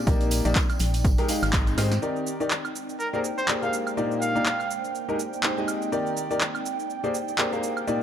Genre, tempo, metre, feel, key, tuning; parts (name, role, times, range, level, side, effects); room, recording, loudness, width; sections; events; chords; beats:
piano house; 123 BPM; 4/4; swing 57% on 16ths; Eb major; A4 = 440 Hz
clear concert grand piano; riff; 0.0-8.0 s; Bb2 to F5; -28 LUFS; left 2 dB; sidechain pumping, dub echo
ethereal airy pad; texture; 0.0-8.0 s; Bb3 to G5; -32 LUFS; right 3 dB; ensemble chorus, built-in reverb, sidechain pumping
organ-like FM bass; bass; 0.1-2.0 s; Ab1 to Ab2; -25 LUFS; equal; sidechain pumping
electronic kick drum; drums; 0.1-1.6 s; -23 LUFS; equal
loose indie drum kit; drums; 0.1-1.9 s; hi-hat, snare drum; -41 LUFS; left 3 dB
punchy analog drum machine; drums; 0.1-8.0 s; handclaps, hi-hat, shaker, snare drum, woodblock; -28 LUFS; right 1 dB
tambourine; percussion; 0.1-2.0 s; -37 LUFS; right 2 dB
clear trumpet; melody; 3.0-4.7 s; Bb4 to F5; -30 LUFS; equal; dub echo
light reverb; -23 LUFS; side -9 dB against mid
0.0-2.0 A section; 2.0-8.0 B section
band accent 1.5; drum fill 1.8
0.1 Ebmaj7/Bb; 1.0 Abmaj7; 2.0 Ebmaj7; 3.0 Bb13; 4.0 Ebmaj7/Bb; 4.9 Abmaj7; 5.9 Ebmaj7; 6.9 Bb13
| 0.07 0.56 1.05 1.53 | 2.02 2.51 3.00 3.48 | 3.97 4.46 4.95 5.44 | 5.92 6.41 6.90 7.39 | 7.88